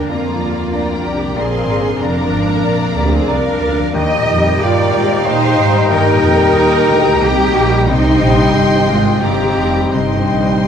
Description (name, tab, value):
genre	cinematic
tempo	82-96 BPM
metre	3/4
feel	rubato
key	Eb major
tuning	A4 = 441 Hz
part	warm symphonic violin section	melody	0.0-10.7 s	F5 to C6	-26 LUFS	left 4 dB	none
part	warm symphonic violin section	second line	0.0-10.7 s	C5 to G5	-25 LUFS	left 2 dB	none
part	clear baby grand piano	accompaniment	0.0-10.7 s	C2 to G5	-20 LUFS	left 2 dB	none
part	rich symphonic viola section	accompaniment	0.0-10.7 s	G3 to G4	-21 LUFS	right 2 dB	none
part	mellow French horn section	sustained chords	0.0-10.7 s	D3 to Bb4	-21 LUFS	left 4 dB	none
part	concert harp	arpeggios	0.0-10.7 s	F2 to D6	-24 LUFS	left 6 dB	none
part	rich symphonic cello section	bass	0.0-10.7 s	Eb4 to Eb5	-19 LUFS	right 2 dB	none
part	rich symphonic double bass section	bass	0.0-10.7 s	F1 to Bb2	-18 LUFS	right 2 dB	none
part	small flute group	second line	0.1-10.7 s	G5 to Bb5	-25 LUFS	equal	none
part	warm clarinet	second line	0.1-10.7 s	D5 to Eb5	-26 LUFS	left 5 dB	none
part	warm oboe	second line	0.1-10.7 s	G5 to Bb5	-27 LUFS	equal	none
room	wet scoring stage reverb, RT60 2.0 s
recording	none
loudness	-11 LUFS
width	side -8 dB against mid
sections	0.0-10.7 A section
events	none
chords	0.1 Bb; 4.0 Eb; 7.9 Cm